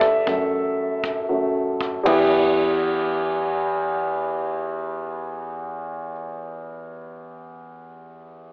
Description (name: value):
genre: piano-driven pop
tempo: free time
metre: none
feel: none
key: E minor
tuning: A4 = 440 Hz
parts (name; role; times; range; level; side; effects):
- warm concert grand piano; accompaniment; 0.0-8.5 s; E2 to E5; -24 LUFS; equal; none
- unplugged drum kit; drums; 0.0-2.2 s; kick drum, ride cymbal; -35 LUFS; equal; none
room: moderate concert hall reverb, RT60 2.3 s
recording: telephone sound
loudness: -23 LUFS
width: mono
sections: 0.0-2.1 A section; 2.1-6.2 B section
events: grand piano solo 0.0-2.1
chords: 0.0 F#m7; 2.1 Em